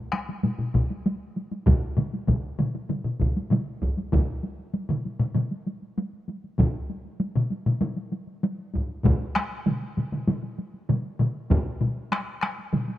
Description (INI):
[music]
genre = japanese traditional, taiko drum ensemble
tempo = 98 BPM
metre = 4/4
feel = straight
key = none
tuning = none
[part]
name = taiko ensemble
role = percussion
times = 0.1-13.0 s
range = none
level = -29 LUFS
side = equal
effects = none
[part]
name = taiko ensemble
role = percussion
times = 0.1-12.9 s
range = none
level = -27 LUFS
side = left 2 dB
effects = none
[part]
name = taiko ensemble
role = percussion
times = 0.7-11.7 s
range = none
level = -25 LUFS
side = equal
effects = none
[part]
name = taiko ensemble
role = percussion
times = 1.7-12.9 s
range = none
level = -30 LUFS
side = right 3 dB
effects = none
[sound]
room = studio reverb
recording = rough home demo mix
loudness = -24 LUFS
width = side -14 dB against mid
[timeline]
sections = 0.0-4.1 A section; 4.1-13.0 B section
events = none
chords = none